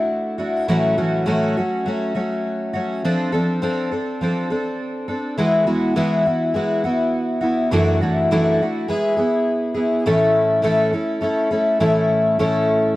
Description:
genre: acoustic folk duo or small band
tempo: 103 BPM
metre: 4/4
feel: straight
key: A major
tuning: A4 = 438 Hz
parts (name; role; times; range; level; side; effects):
- fingerpicked twelve-string acoustic guitar; solo; 0.0-13.0 s; F#2 to A4; -17 LUFS; equal; tape echo
room: little or no reverb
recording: dry, close 1970s-style studio recording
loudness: -17 LUFS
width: side -17 dB against mid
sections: 0.0-10.1 A section; 10.1-13.0 B section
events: none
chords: 0.0 Dadd9; 0.7 A6; 3.0 F6; 5.4 Eadd9; 7.7 Dadd9/F#; 8.9 E; 10.1 A

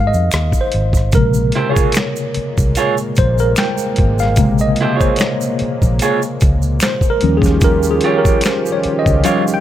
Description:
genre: R&B, neo-soul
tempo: 74 BPM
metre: 4/4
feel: swing 54% on 16ths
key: Bb dorian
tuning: A4 = 442 Hz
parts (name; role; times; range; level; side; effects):
- tine electric piano; accompaniment; 0.0-9.6 s; C3 to G5; -17 LUFS; left 1 dB; overdrive, fast stereo tremolo
- vintage muted fingered electric bass; bass; 0.0-9.2 s; Ab1 to Ab2; -17 LUFS; equal; none
- egg shaker and finger snaps; percussion; 0.1-9.6 s; none; -27 LUFS; right 1 dB; none
- boom bap sampler-style drum kit; drums; 0.3-9.4 s; finger snaps, hi-hat, kick drum, rim click, snare drum; -16 LUFS; equal; none
- warm analog pad; sustained chords; 1.1-9.6 s; Bb2 to G4; -23 LUFS; equal; chorus
- electric guitar through a small old amp; second line; 1.6-9.4 s; F4 to Db5; -20 LUFS; right 6 dB; none
room: digital ambience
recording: none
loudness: -12 LUFS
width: side -12 dB against mid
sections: 0.0-9.6 A section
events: tine electric piano solo 0.0-9.6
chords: 0.0 Fm7; 1.1 Bbm7; 7.2 Eb9

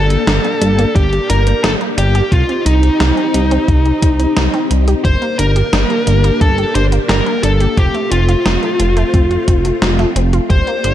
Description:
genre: synthwave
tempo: 88 BPM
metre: 4/4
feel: straight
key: G minor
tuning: A4 = 440 Hz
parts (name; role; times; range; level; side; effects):
- smooth overdriven lead guitar; melody; 0.0-10.9 s; Eb4 to C5; -17 LUFS; left 1 dB; ping-pong delay
- string machine, full ensemble; sustained chords; 0.0-10.9 s; A3 to G4; -21 LUFS; equal; phaser, ensemble chorus, sidechain pumping
- wide unison pluck; arpeggios; 0.0-10.9 s; F3 to G4; -24 LUFS; right 2 dB; ping-pong delay
- chorused synth bass; bass; 0.0-10.9 s; F1 to C2; -14 LUFS; equal; sidechain pumping
- gated 80s digital drum machine; drums; 0.1-10.9 s; hi-hat, snare drum; -20 LUFS; right 1 dB; gated reverb, gated reverb snare
- electronic kick drum; drums; 1.0-10.6 s; none; -13 LUFS; equal; none
room: light reverb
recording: dark, warm production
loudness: -11 LUFS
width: side -11 dB against mid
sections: 0.0-10.9 A section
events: filter sweep on synth arpeggio sound 0.0-10.9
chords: 0.0 Gm; 2.3 Cm; 5.0 Gm; 7.8 F

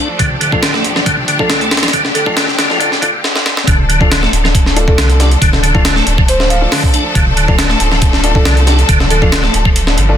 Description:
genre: breakbeat, breaks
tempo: 138 BPM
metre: 4/4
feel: straight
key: D minor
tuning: A4 = 440 Hz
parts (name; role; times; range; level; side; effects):
- clear studio string section; sustained chords; 0.0-10.2 s; F3 to A4; -19 LUFS; left 1 dB; sidechain pumping
- tonewheel organ; riff; 0.0-9.7 s; C3 to D4; -16 LUFS; equal; overdrive, chorus vibrato, slow rotary speaker, low-pass filter, tape echo
- saturated sub bass; bass; 0.2-10.2 s; D1 to C2; -14 LUFS; equal; none
- breakbeat sampler-style drum kit; drums; 0.2-10.1 s; hi-hat, kick drum, snare drum; -13 LUFS; equal; none
- warm baby grand piano; stabs; 0.5-10.2 s; A3 to A4; -22 LUFS; left 3 dB; vintage 12-bit sampler grit, tape echo
- marimba with soft mallets; melody; 1.4-9.7 s; A4 to F5; -22 LUFS; right 2 dB; old record sound, tape echo
room: light reverb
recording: dense, heavily limited modern master, high-pass filter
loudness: -9 LUFS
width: side -9 dB against mid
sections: 0.0-3.7 A section; 3.7-10.2 B section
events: build-up 0.0-3.7; drum fill 3.2-3.7; drop 3.7-10.2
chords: 0.0 Dm

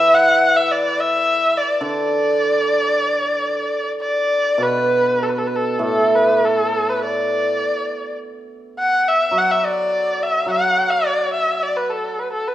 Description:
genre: chinese traditional, Chinese chamber ensemble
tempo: 95-106 BPM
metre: 4/4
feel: rubato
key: D gong mode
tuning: A4 = 439 Hz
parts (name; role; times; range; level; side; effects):
- dark erhu; melody; 0.0-12.5 s; A4 to F#5; -17 LUFS; left 1 dB; none
- hammered dulcimer; accompaniment; 0.0-12.2 s; A2 to F#3; -21 LUFS; right 1 dB; none
room: light reverb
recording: dark, warm production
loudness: -16 LUFS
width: side -13 dB against mid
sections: 0.0-4.6 A section; 4.6-12.5 B section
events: none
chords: none

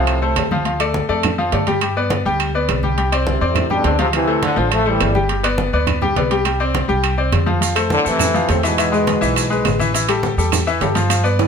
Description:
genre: latin, salsa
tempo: 207 BPM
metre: 4/4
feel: straight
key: C major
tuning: A4 = 441 Hz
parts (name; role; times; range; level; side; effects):
- brilliant trombone section; melody; 0.0-0.5, 3.3-5.2, 7.9-9.8 s; G2 to A3; -19 LUFS; equal; plate reverb
- bright concert grand piano; accompaniment; 0.0-11.5 s; E3 to G5; -19 LUFS; left 3 dB; none
- upright bass; bass; 0.0-11.5 s; G1 to G2; -21 LUFS; right 1 dB; none
- claves; percussion; 0.1-11.2 s; none; -28 LUFS; right 12 dB; none
- congas; percussion; 0.1-11.5 s; none; -25 LUFS; equal; none
- timbales; percussion; 0.1-11.5 s; none; -24 LUFS; right 5 dB; none
- maracas; percussion; 7.6-11.5 s; none; -27 LUFS; right 7 dB; none
room: light reverb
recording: none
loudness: -15 LUFS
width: side -6 dB against mid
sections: 0.0-11.5 A section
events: none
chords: 0.0 F; 0.7 Dm; 1.8 G; 3.0 Cadd9; 4.1 Dm7; 5.3 G; 6.5 Csus2; 7.6 Fmaj7; 8.8 E; 9.9 A5

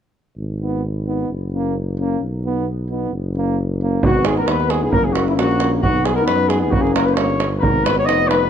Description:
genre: balkan folk, Balkan brass band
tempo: 132 BPM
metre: 2/4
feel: swing 55% on 16ths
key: G# minor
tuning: A4 = 440 Hz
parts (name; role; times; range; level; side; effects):
- mellow tuba; bass; 0.4-8.5 s; E#1 to F#2; -22 LUFS; equal; none
- bright trombone; accompaniment; 0.6-8.5 s; A#3 to B3; -25 LUFS; right 7 dB; none
- dark French horn; accompaniment; 0.6-8.5 s; C#4 to D#4; -24 LUFS; left 6 dB; none
- warm flugelhorn; melody; 4.0-8.5 s; E4 to D#5; -20 LUFS; left 2 dB; none
- mellow alto saxophone; second line; 4.0-8.5 s; E4 to D#5; -24 LUFS; left 5 dB; none
- davul; percussion; 4.0-8.4 s; none; -21 LUFS; right 4 dB; none
room: light reverb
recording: close, detailed microphones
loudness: -16 LUFS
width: side -8 dB against mid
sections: 0.4-4.0 A section; 4.0-8.5 B section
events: none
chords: 0.4 G#m; 1.3 F#; 2.2 B; 3.1 F#; 4.0 G#m; 4.9 F#; 5.8 B; 6.8 F#; 7.7 G#m

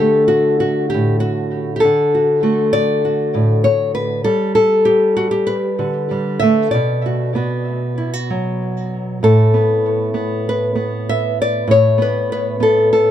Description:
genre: folk, solo fingerstyle acoustic guitar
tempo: 98 BPM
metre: 4/4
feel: straight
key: unclear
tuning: A4 = 440 Hz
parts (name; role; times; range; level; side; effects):
- nylon-string guitar; solo; 0.0-13.1 s; A2 to E5; -14 LUFS; equal; tape echo
room: light reverb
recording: dark, warm production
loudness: -14 LUFS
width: side -10 dB against mid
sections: 0.0-9.2 A section; 9.2-13.1 B section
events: none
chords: 0.0 D; 4.3 G; 6.7 Bm; 9.2 Asus2

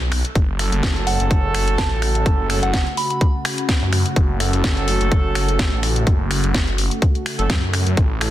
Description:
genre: bass house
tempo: 126 BPM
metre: 4/4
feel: swing 55% on 16ths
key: F# minor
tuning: A4 = 440 Hz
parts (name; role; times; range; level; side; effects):
- phased detuned saw bass; bass; 0.0-8.3 s; F#1 to F#2; -21 LUFS; equal; phaser, tube saturation, sidechain pumping
- garage drum kit; drums; 0.1-8.3 s; finger snaps, hi-hat, snare drum; -24 LUFS; left 1 dB; none
- sweeping resonant pad; sustained chords; 0.4-8.3 s; C#3 to F#4; -27 LUFS; equal; chorus, sidechain pumping
- electronic kick drum; drums; 0.4-8.1 s; none; -18 LUFS; equal; none
- mellow horn section; stabs; 0.6-8.3 s; A3 to A4; -26 LUFS; right 4 dB; sidechain pumping, dub echo
- soft synth bell; melody; 1.1-3.2 s; F#5 to B5; -27 LUFS; right 1 dB; chorus, vintage 12-bit sampler grit, dub echo
room: light reverb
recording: dense, heavily limited modern master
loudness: -16 LUFS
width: side -13 dB against mid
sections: 0.0-8.3 A section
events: none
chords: 0.4 F#m

